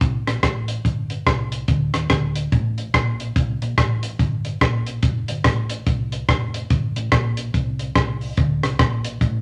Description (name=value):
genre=ska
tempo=144 BPM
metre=4/4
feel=swing 61% on 8ths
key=unclear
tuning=A4 = 440 Hz
part: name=hollow-body short-scale fingered electric bass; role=bass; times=0.0-9.4 s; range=F1 to Eb2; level=-28 LUFS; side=equal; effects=none
part: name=compact cocktail drum kit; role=drums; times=0.0-9.3 s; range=hi-hat, kick drum, rim click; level=-22 LUFS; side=equal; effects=none
room=moderate large studio reverb, RT60 0.8 s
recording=none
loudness=-21 LUFS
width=mono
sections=0.0-9.4 A section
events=none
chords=none